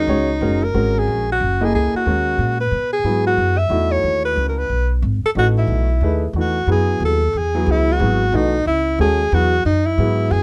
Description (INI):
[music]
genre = modal jazz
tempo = 182 BPM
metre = 3/4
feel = swing 63% on 8ths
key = F# minor from 6.7 s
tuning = A4 = 437 Hz
[part]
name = breathy alto saxophone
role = melody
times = 0.0-10.4 s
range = D#4 to E5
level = -22 LUFS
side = equal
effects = none
[part]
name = warm grand piano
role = accompaniment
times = 0.0-10.4 s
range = E3 to D#5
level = -24 LUFS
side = equal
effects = none
[part]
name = upright bass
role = bass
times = 0.0-10.4 s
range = F#1 to B2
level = -22 LUFS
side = equal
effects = none
[sound]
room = light reverb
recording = close, detailed microphones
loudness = -18 LUFS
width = mono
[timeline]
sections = 0.0-6.7 A section; 6.7-10.4 B section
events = none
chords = 0.0 G#9sus4; 2.7 F#13sus4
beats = 0.09 0.41 | 0.74 1.07 1.40 | 1.73 2.06 2.39 | 2.72 3.05 3.38 | 3.71 4.04 4.37 | 4.70 5.03 5.36 | 5.69 6.02 6.35 | 6.68 7.01 7.34 | 7.67 8.00 8.33 | 8.66 8.99 9.32 | 9.65 9.98 10.31